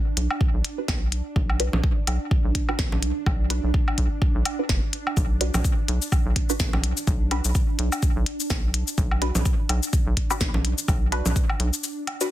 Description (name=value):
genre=minimal techno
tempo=126 BPM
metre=4/4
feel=swing 57% on 16ths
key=B minor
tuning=A4 = 440 Hz
part: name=swarming drone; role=texture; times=0.0-12.3 s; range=D4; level=-34 LUFS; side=right 3 dB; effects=built-in reverb, sidechain pumping
part: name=rubbery square bass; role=bass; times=0.2-11.7 s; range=F#1 to B1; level=-24 LUFS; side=equal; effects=sidechain pumping
part: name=minimal click drum kit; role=drums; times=0.2-12.3 s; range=cabasa, hi-hat, snare drum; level=-28 LUFS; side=left 3 dB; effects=small room ambience, soft clipping on snare
part: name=woodblock and congas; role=percussion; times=0.3-12.2 s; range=none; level=-30 LUFS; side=right 1 dB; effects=overdrive, small room ambience, digital delay
part: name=electronic kick drum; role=drums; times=0.4-11.5 s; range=none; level=-23 LUFS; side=equal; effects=small room ambience
part: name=filtered dub chord stab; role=stabs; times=0.8-12.3 s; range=D4 to B4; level=-29 LUFS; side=right 1 dB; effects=phaser, analog chorus, digital delay
room=little or no reverb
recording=dense, heavily limited modern master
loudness=-21 LUFS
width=side -14 dB against mid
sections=0.0-12.3 A section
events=filter sweep on synth stab 0.0-12.3; break 11.8-12.3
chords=0.0 Bm